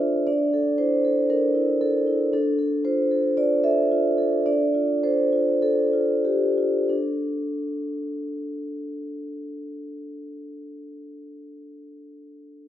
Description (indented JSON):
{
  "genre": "classical, contemporary piece for solo vibraphone",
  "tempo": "90-118 BPM",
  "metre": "4/4",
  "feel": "rubato",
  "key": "D minor",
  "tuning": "A4 = 439 Hz",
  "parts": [
    { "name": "vibraphone with soft mallets", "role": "solo", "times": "0.0-12.7 s", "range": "D4 to E5", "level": "-22 LUFS", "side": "equal", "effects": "none" }
  ],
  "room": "wet recital hall reverb, RT60 1.4 s",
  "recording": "nothing above 7.9 kHz",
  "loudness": "-20 LUFS",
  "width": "side -11 dB against mid",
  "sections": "0.0-6.9 A section; 6.9-12.1 B section",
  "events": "slowing down 1.3-6.9",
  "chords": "0.3 Bbmaj7#11/D; 2.3 Dm7; 6.9 D5"
}